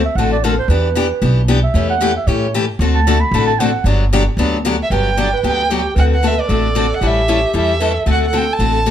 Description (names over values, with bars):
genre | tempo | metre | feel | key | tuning
acoustic string swing (jazz manouche) | 228 BPM | 4/4 | swing 56% on 8ths | G major | A4 = 441 Hz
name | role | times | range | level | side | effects
breathy clarinet | second line | 0.0-8.9 s | G4 to B5 | -21 LUFS | right 6 dB | none
upright bass | bass | 0.0-8.9 s | G1 to A2 | -17 LUFS | equal | none
picked steel-string acoustic guitar | accompaniment | 0.2-8.9 s | D3 to A4 | -18 LUFS | left 5 dB | none
dark violin | melody | 4.8-8.9 s | D5 to A5 | -18 LUFS | right 2 dB | plate reverb
room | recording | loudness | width
light reverb | none | -13 LUFS | side -10 dB against mid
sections
0.0-4.9 A section; 4.9-8.9 B section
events
clarinet solo 0.0-4.9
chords
0.0 D7; 0.7 Em7; 1.7 A7/E; 2.8 D7; 3.9 Gmaj7; 6.0 D6; 7.0 A7; 8.1 D7